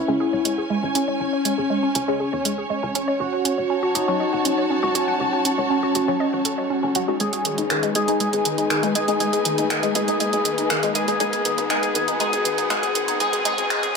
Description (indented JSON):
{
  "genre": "melodic techno",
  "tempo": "120 BPM",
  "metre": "4/4",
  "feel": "straight",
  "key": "unclear",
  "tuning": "A4 = 439 Hz",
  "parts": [
    { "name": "resonant sweep polysynth", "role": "melody", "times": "0.0-13.9 s", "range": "C#4 to G#4", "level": "-24 LUFS", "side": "left 2 dB", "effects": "chorus, analog delay" },
    { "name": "deep dark ambient pad", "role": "sustained chords", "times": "1.4-14.0 s", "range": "F#4 to B5", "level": "-39 LUFS", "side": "left 4 dB", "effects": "none" },
    { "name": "woody wave-folded pluck", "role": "arpeggios", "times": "0.0-13.9 s", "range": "D#3 to F#5", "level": "-26 LUFS", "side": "right 1 dB", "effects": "chorus, cassette tape, tape echo" },
    { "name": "tight sequencer bass", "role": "bass", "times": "0.0-13.9 s", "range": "D#1 to E2", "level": "-36 LUFS", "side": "equal", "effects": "high-pass filter" },
    { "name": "riser", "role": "sound effects", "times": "1.1-14.0 s", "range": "none", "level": "-33 LUFS", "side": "right 2 dB", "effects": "none" },
    { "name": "dark studio string section", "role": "texture", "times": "0.0-14.0 s", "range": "C#4 to A5", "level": "-27 LUFS", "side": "right 1 dB", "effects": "none" },
    { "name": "filtered dub chord stab", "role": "stabs", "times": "0.1-13.8 s", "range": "C#3 to G#4", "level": "-28 LUFS", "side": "left 1 dB", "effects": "phaser, wide subtle chorus, tape echo" },
    { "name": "house drum kit", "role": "drums", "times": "0.5-13.9 s", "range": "finger snaps, hi-hat", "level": "-25 LUFS", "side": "right 2 dB", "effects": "high-pass filter on hats, high-pass filter on snare, high-pass filter on room" }
  ],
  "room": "moderate spring reverb, RT60 1.9 s",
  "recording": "echo-heavy mix, high-pass filter",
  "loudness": "-19 LUFS",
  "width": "side -5 dB against mid",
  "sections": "0.0-14.0 A section",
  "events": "build-up 0.0-14.0; filter sweep on synth pluck 0.0-14.0; filter sweep on analog polysynth 0.0-14.0; filter sweep 0.0-14.0; riser 1.1-14.0",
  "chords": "0.0 C#m; 3.2 F#m; 7.2 G#m; 11.2 B"
}